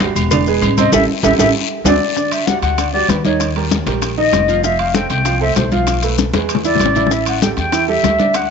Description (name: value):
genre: Afro-Cuban jazz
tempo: 194 BPM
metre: 4/4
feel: straight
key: unclear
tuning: A4 = 438 Hz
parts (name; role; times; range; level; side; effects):
- clear upright piano; accompaniment; 0.0-8.4 s; C3 to F5; -19 LUFS; right 10 dB; none
- upright bass; bass; 0.0-8.5 s; E1 to E2; -20 LUFS; left 1 dB; none
- congas; percussion; 0.0-8.5 s; none; -21 LUFS; left 2 dB; none
- cowbell and bongos; percussion; 0.0-8.5 s; none; -22 LUFS; left 15 dB; none
- guiro; percussion; 0.0-8.5 s; none; -28 LUFS; left 15 dB; none
- maracas; percussion; 0.0-8.5 s; none; -26 LUFS; left 16 dB; none
- agogo bells and timbales; percussion; 0.2-8.5 s; none; -25 LUFS; right 11 dB; none
- mellow silver concert flute; melody; 0.8-8.5 s; B4 to G5; -18 LUFS; left 3 dB; none
room: light reverb, small room ambience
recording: 1960s-style stereo with parts hard left and right, nothing above 7.9 kHz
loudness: -13 LUFS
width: side -6 dB against mid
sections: 0.0-2.2 A section; 2.2-8.5 B section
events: flute solo 0.0-2.2; band accent 0.9-2.2; drum fill 1.2-2.2, 6.3-7.1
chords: 0.3 E7; 0.9 A5; 1.6 D7; 2.2 G5; 3.4 Ebadd9; 4.6 F; 5.9 Fmaj7#11/B; 6.5 E7; 7.1 A5